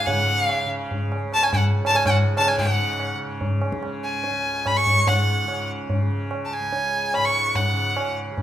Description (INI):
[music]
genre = indian classical, Hindustani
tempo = 145 BPM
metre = 3/4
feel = straight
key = unclear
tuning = A4 = 440 Hz
[part]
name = bright violin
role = melody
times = 0.0-8.2 s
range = F#5 to C#6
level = -21 LUFS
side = equal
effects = none
[part]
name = tanpura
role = drone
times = 0.0-8.4 s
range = C#2 to C#3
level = -30 LUFS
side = equal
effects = none
[part]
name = tabla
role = percussion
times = 0.1-8.4 s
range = none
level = -24 LUFS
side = equal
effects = none
[sound]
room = moderate recital hall reverb, RT60 1.5 s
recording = minimal, uncompressed stereo recording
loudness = -20 LUFS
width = side -11 dB against mid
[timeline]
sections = 0.0-2.6 A section; 2.6-8.4 B section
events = none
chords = none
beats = | 0.07 0.49 0.91 | 1.32 1.74 2.16 | 2.57 2.99 3.40 | 3.82 4.24 4.65 | 5.06 5.48 5.89 | 6.30 6.72 7.13 | 7.54 7.96 8.37